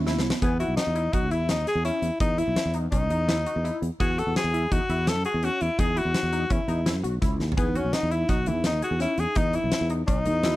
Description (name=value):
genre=progressive instrumental, band music in an uneven meter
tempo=168 BPM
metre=5/4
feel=straight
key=unclear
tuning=A4 = 440 Hz
part: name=clear tenor saxophone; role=melody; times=0.0-10.6 s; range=B3 to A4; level=-27 LUFS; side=left 2 dB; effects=none
part: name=vibraphone with soft mallets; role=second line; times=0.0-0.4, 7.6-10.6 s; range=B3 to F#4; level=-34 LUFS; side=right 5 dB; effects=none
part: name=fretless electric bass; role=bass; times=0.0-10.6 s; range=B1 to F#2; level=-27 LUFS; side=equal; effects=none
part: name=tight sequenced synth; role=arpeggios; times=0.1-10.6 s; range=E3 to G#4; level=-33 LUFS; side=left 2 dB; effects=chorus
part: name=huge arena drum kit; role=drums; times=0.1-10.5 s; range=hi-hat, kick drum, snare drum, toms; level=-28 LUFS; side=equal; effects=none
room=small room ambience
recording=dry, close 1970s-style studio recording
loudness=-22 LUFS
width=side -16 dB against mid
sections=0.4-10.6 A section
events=drum fill 0.1-0.4, 7.4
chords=0.4 Badd11 (rootless)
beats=0.06 | 0.42 0.78 1.13 1.49 1.85 | 2.21 2.57 2.92 3.28 3.64 | 4.00 4.36 4.71 5.07 5.43 | 5.79 6.14 6.50 6.86 7.22 | 7.58 7.93 8.29 8.65 9.01 | 9.37 9.72 10.08 10.44